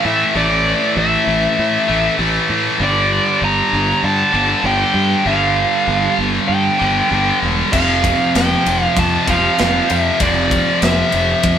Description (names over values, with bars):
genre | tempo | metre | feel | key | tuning
heavy metal | 97 BPM | 4/4 | straight | unclear | A4 = 438 Hz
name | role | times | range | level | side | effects
high-gain lead guitar | melody | 0.0-11.6 s | D5 to Bb5 | -17 LUFS | equal | distortion
heavy high-gain guitar | riff | 0.0-11.6 s | F2 to A3 | -16 LUFS | left 1 dB | distortion
fuzz fingered electric bass | bass | 0.1-11.6 s | E1 to A2 | -21 LUFS | equal | overdrive
tight metal drum kit | drums | 7.7-11.6 s | crash cymbal, kick drum, ride cymbal, snare drum | -20 LUFS | equal | none
room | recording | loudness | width
light reverb | band playing live in one room | -13 LUFS | side -9 dB against mid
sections
0.0-11.6 A section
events
none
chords
0.0 A5; 2.8 G5; 7.7 F5